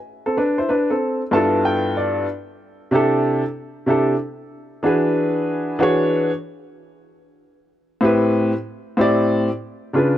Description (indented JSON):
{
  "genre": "hip hop",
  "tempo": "94 BPM",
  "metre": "4/4",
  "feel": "swing 65% on 16ths",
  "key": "unclear",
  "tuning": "A4 = 439 Hz",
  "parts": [
    { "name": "warm upright piano", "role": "solo", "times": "0.3-10.2 s", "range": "G2 to A5", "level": "-17 LUFS", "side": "equal", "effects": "none" }
  ],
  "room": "small room reverb",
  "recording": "dry, close 1970s-style studio recording",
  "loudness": "-17 LUFS",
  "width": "side -12 dB against mid",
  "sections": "0.0-10.2 A section",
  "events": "upright piano fill 1.0-2.3",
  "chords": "0.0 N.C.; 1.0 G13; 2.3 C6; 4.8 E7; 7.4 Am7"
}